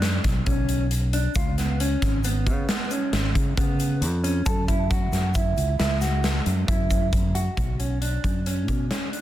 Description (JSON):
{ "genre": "progressive instrumental, band music in an uneven meter", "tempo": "135 BPM", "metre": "7/4", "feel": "straight", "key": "B dorian", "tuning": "A4 = 441 Hz", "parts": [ { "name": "mellow electric guitar", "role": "arpeggios", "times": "0.0-9.2 s", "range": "B3 to A4", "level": "-29 LUFS", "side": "right 1 dB", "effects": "wide subtle chorus, tape echo, plate reverb" }, { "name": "fingered electric bass", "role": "bass", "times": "0.0-8.9 s", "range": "G#1 to C#3", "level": "-24 LUFS", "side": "equal", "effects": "none" }, { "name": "big rock drum kit", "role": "drums", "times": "0.0-9.2 s", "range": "hi-hat, kick drum, snare drum", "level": "-25 LUFS", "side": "equal", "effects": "none" }, { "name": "egg shaker", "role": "percussion", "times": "1.4-7.2 s", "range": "none", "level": "-41 LUFS", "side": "left 4 dB", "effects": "none" } ], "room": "light reverb", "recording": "dense, heavily limited modern master", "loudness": "-21 LUFS", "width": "side -13 dB against mid", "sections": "0.0-7.6 A section; 7.6-9.2 B section", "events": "none", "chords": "0.0 Bmadd9; 1.4 C#7; 4.5 F#7(no3); 7.6 Bmadd9" }